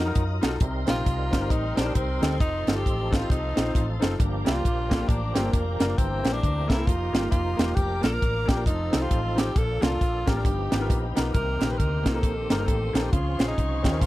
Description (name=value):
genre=uptempo gospel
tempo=134 BPM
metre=4/4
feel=swing 60% on 8ths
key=unclear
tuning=A4 = 440 Hz
part: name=breathy tenor saxophone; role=melody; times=0.0-14.1 s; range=Bb3 to Cb5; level=-30 LUFS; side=equal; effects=none
part: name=clear grand piano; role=accompaniment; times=0.0-14.1 s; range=G2 to C5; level=-31 LUFS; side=left 2 dB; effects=none
part: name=dark studio string section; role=sustained chords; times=0.0-14.1 s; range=C5 to Eb6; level=-41 LUFS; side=left 4 dB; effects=none
part: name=tonewheel organ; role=sustained chords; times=0.0-14.1 s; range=Eb3 to Bb4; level=-35 LUFS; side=right 3 dB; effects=slow rotary speaker, chorus vibrato
part: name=hollow-body short-scale fingered electric bass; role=bass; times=0.0-14.1 s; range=E1 to Gb2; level=-28 LUFS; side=equal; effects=none
part: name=tight funk drum kit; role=drums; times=0.2-14.1 s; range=hi-hat, kick drum, snare drum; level=-24 LUFS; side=equal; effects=none
room=little or no reverb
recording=dry, close 1970s-style studio recording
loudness=-22 LUFS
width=side -16 dB against mid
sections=0.0-14.1 A section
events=none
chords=0.0 Ebmadd9; 0.6 Cm7; 2.4 F7; 4.2 Gm7; 6.0 C7/G; 6.9 F9sus4; 7.8 Bb/F; 8.7 F7; 9.6 Bbmaj7; 10.4 G7alt; 11.3 Cm7; 13.1 Dbmaj7